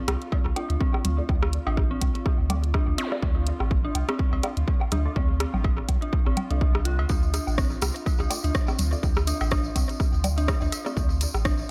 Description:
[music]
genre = minimal techno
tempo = 124 BPM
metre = 4/4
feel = swing 56% on 16ths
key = D minor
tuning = A4 = 440 Hz
[part]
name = bubbling stepped-filter texture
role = texture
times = 0.0-11.7 s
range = F4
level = -45 LUFS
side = equal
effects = chorus, built-in reverb, sidechain pumping
[part]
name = punchy sub bass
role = bass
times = 0.1-11.6 s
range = A1 to D2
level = -28 LUFS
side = equal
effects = sidechain pumping
[part]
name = house drum kit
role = drums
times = 0.1-11.6 s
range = hi-hat, rim click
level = -34 LUFS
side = equal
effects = overdrive, tape echo
[part]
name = electronic rim click, woodblock, cowbell and congas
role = percussion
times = 0.1-11.4 s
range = none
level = -35 LUFS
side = equal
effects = tape echo
[part]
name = electronic kick drum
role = drums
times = 0.3-11.6 s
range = none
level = -27 LUFS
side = equal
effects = overdrive
[part]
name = dark detuned synth bell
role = riff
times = 0.6-11.5 s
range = C4 to F4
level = -35 LUFS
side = equal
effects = chorus, sidechain pumping, dub echo
[part]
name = filtered dub chord stab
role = stabs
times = 0.6-10.9 s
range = A3 to D5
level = -41 LUFS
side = equal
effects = phaser, tape echo
[part]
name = zap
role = sound effects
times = 3.0-3.1 s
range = none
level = -38 LUFS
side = equal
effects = none
[part]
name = tambourine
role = percussion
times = 7.1-11.7 s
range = none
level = -40 LUFS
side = equal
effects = tape echo
[sound]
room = little or no reverb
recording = echo-heavy mix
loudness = -25 LUFS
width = mono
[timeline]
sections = 0.0-11.7 A section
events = none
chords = 0.0 Dm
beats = 0.32 0.81 | 1.29 1.77 2.26 2.74 | 3.23 3.71 4.19 4.68 | 5.16 5.64 6.13 6.61 | 7.10 7.58 8.06 8.55 | 9.03 9.52 10.00 10.48 | 10.97 11.45

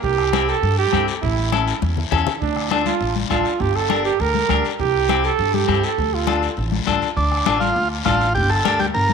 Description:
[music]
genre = latin, cumbia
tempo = 202 BPM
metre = 4/4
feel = straight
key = D minor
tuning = A4 = 440 Hz
[part]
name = mellow trumpet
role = second line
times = 0.0-6.4 s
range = D4 to Bb4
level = -21 LUFS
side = right 9 dB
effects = none
[part]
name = upright bass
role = bass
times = 0.0-9.1 s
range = G1 to G2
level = -23 LUFS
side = equal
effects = none
[part]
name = bombo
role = percussion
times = 0.0-8.8 s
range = none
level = -28 LUFS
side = left 1 dB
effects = none
[part]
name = guiro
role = percussion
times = 0.0-9.1 s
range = none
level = -31 LUFS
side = left 12 dB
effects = none
[part]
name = congas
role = percussion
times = 0.2-9.1 s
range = none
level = -27 LUFS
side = left 14 dB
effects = none
[part]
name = clean electric guitar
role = accompaniment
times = 0.3-8.9 s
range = C4 to Bb4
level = -24 LUFS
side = left 9 dB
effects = none
[part]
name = overdriven combo organ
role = melody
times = 7.2-9.1 s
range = D4 to Bb4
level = -19 LUFS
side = right 2 dB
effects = none
[sound]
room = moderate plate reverb, RT60 2.6 s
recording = 1960s-style stereo with parts hard left and right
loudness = -17 LUFS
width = side -6 dB against mid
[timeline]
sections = 0.0-7.2 A section; 7.2-9.1 B section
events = trumpet solo 0.0-7.2; drum fill 1.5-2.4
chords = 0.0 C; 1.2 A; 2.4 Dm; 3.6 Gm; 4.8 C; 6.0 Dm; 8.4 Gm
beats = | 0.04 0.34 0.63 0.93 | 1.23 1.52 1.82 2.12 | 2.42 2.71 3.01 3.31 | 3.60 3.90 4.20 4.50 | 4.79 5.09 5.39 5.69 | 5.98 6.28 6.58 6.87 | 7.17 7.47 7.76 8.06 | 8.36 8.65 8.95

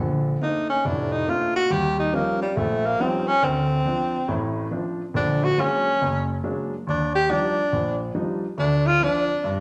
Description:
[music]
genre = jazz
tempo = 140 BPM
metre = 4/4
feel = swing 65% on 8ths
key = Bb major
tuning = A4 = 438 Hz
[part]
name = warm grand piano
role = accompaniment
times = 0.0-9.6 s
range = F1 to Eb4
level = -27 LUFS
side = equal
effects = none
[part]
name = breathy tenor saxophone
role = melody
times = 0.4-9.6 s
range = G3 to G4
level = -24 LUFS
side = equal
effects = none
[sound]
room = wet large studio reverb, RT60 1.1 s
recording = none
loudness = -23 LUFS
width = mono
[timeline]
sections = 0.0-9.6 A section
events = none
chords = 0.0 Bbmaj9; 1.7 Eb9; 3.4 Dm7; 5.1 Bb7alt; 6.9 Ebmaj9; 8.6 Dm7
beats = 0.41 0.84 1.27 | 1.70 2.13 2.56 2.99 | 3.42 3.85 4.28 4.71 | 5.14 5.57 6.00 6.43 | 6.86 7.29 7.72 8.14 | 8.57 9.00 9.43

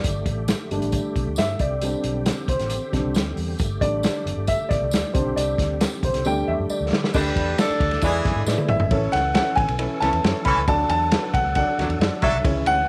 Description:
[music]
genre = uptempo 1960s-style soul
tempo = 136 BPM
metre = 4/4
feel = straight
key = G major, A major from 8.9 s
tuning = A4 = 441 Hz
[part]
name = dark upright piano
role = accompaniment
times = 0.0-12.8 s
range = G3 to G5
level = -28 LUFS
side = equal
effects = none
[part]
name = bright tonewheel organ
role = sustained chords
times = 0.0-12.9 s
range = D3 to A4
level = -36 LUFS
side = equal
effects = slow rotary speaker, chorus vibrato
[part]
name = vintage muted fingered electric bass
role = bass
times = 0.0-12.8 s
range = F#1 to D3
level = -30 LUFS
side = equal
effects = none
[part]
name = vintage drum kit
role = drums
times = 0.0-12.8 s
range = crash cymbal, hi-hat, kick drum, ride cymbal, snare drum, toms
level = -27 LUFS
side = equal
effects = none
[part]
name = congas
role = percussion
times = 0.0-12.6 s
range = none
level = -41 LUFS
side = equal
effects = none
[part]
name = tambourine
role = percussion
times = 0.0-8.6 s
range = none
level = -41 LUFS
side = equal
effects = none
[part]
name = warm horn section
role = second line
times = 7.1-12.4 s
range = E3 to B4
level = -28 LUFS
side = equal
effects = none
[part]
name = clear concert grand piano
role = melody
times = 8.7-12.9 s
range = E5 to B5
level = -24 LUFS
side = equal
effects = none
[sound]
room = light reverb, small room ambience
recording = none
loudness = -22 LUFS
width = mono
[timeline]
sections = 0.0-7.1 A section; 7.1-8.9 B section; 8.9-12.9 C section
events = upright piano solo 0.0-7.1; drum fill 6.3-7.1, 8.5-8.9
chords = 0.0 Gsus2; 1.6 Csus2; 3.6 Gsus2; 5.1 Csus2; 6.3 Dsus4; 8.0 E7; 8.9 A; 10.7 D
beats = | 0.05 0.49 0.94 1.38 | 1.82 2.27 2.71 3.15 | 3.60 4.04 4.48 4.92 | 5.37 5.81 6.25 6.70 | 7.14 7.58 8.03 8.47 | 8.91 9.35 9.79 10.24 | 10.68 11.12 11.56 12.01 | 12.45

